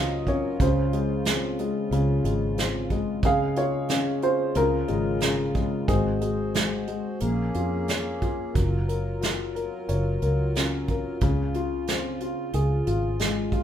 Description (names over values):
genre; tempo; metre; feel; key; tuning
acoustic folk-pop ballad; 91 BPM; 4/4; straight; Db major; A4 = 440 Hz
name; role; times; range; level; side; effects
dark baby grand piano; melody; 0.0-13.6 s; Db3 to F5; -26 LUFS; left 2 dB; none
pedal harmonium; sustained chords; 0.0-13.6 s; Db3 to C5; -33 LUFS; left 1 dB; none
fingered electric bass; bass; 0.0-13.6 s; Gb1 to F2; -28 LUFS; equal; none
soft brush drum kit; drums; 0.3-13.6 s; hi-hat, kick drum, snare drum; -28 LUFS; right 2 dB; none
room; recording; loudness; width
moderate large studio reverb, RT60 0.8 s; band playing live in one room; -23 LUFS; side -10 dB against mid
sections
0.0-13.6 A section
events
none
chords
0.0 Gbmaj7; 0.6 Dbmaj7; 5.9 Ab7; 7.2 Bbm7; 8.6 Gbmaj7; 11.2 Dbmaj7